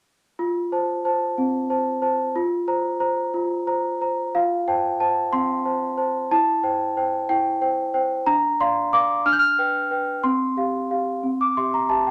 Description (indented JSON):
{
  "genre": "classical, lullaby for celesta",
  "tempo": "61 BPM (dotted quarters)",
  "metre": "6/8",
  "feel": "straight",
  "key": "F major",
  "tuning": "A4 = 440 Hz",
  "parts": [
    { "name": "celesta", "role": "solo", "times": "0.4-12.1 s", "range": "C4 to G6", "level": "-22 LUFS", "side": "equal", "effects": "none" }
  ],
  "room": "wet studio reverb, RT60 0.5 s",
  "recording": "none",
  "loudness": "-22 LUFS",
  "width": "mono",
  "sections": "0.4-4.4 A section; 4.4-12.1 B section",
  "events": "none",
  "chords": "0.4 F; 2.4 Fsus4; 4.4 F; 6.3 C/E; 8.3 Dm7; 9.3 G7/D; 10.2 Csus4; 11.2 C"
}